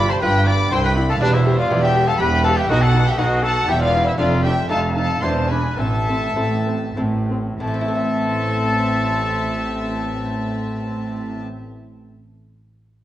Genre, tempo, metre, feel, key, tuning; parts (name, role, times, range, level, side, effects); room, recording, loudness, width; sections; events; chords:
classical, baroque-style concerto movement with solo episodes; 92-122 BPM; 3/4; straight; A minor; A4 = 438 Hz
mellow trumpet; melody; 0.0-11.4 s; D4 to D5; -23 LUFS; left 1 dB
warm chamber violin section; melody; 0.0-11.4 s; D5 to D6; -26 LUFS; left 4 dB
rich chamber violin section; second line; 0.0-11.4 s; B4 to B5; -26 LUFS; equal
dark chamber viola section; accompaniment; 0.0-11.4 s; C4 to G4; -28 LUFS; left 1 dB
lute; accompaniment; 0.0-11.8 s; E2 to E5; -29 LUFS; equal
rich chamber double bass section; bass; 0.0-11.4 s; E1 to C2; -24 LUFS; right 2 dB
warm chamber cello section; bass; 0.0-11.4 s; C2 to B2; -23 LUFS; right 1 dB
wet recital hall reverb, RT60 1.6 s; worn, warbling old tape, cassette tape, warbly pitch drift; -17 LUFS; side -13 dB against mid
0.0-7.6 A section; 7.6-11.5 B section
slowing down 3.4-7.6
0.0 G7; 0.7 C; 1.2 Em; 2.7 B; 3.7 E5; 4.2 Dm/F; 4.7 F7; 5.2 E7; 5.8 Am